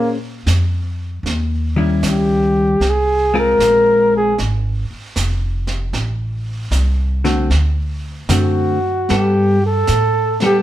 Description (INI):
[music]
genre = jazz ballad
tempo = 77 BPM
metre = 4/4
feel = swing 67% on 8ths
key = unclear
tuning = A4 = 442 Hz
[part]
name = breathy flugelhorn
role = melody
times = 0.0-10.6 s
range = F#4 to Bb4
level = -15 LUFS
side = equal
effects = none
[part]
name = hollow-body jazz guitar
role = accompaniment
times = 0.0-10.6 s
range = D3 to C5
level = -18 LUFS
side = left 2 dB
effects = none
[part]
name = upright bass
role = bass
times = 0.0-10.6 s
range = F1 to Bb2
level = -19 LUFS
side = equal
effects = none
[part]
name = vintage brush drum kit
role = drums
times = 0.5-10.6 s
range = brushed snare drum, hi-hat, snare drum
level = -26 LUFS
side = right 3 dB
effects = none
[sound]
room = moderate large studio reverb, RT60 0.9 s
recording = band playing live in one room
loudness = -14 LUFS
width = side -13 dB against mid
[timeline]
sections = 0.0-10.6 A section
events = flugelhorn solo 0.0-10.6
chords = 0.0 Bbm9; 1.2 Eb7b9; 2.8 Ab69; 5.9 Am; 7.5 D7; 9.1 Gadd9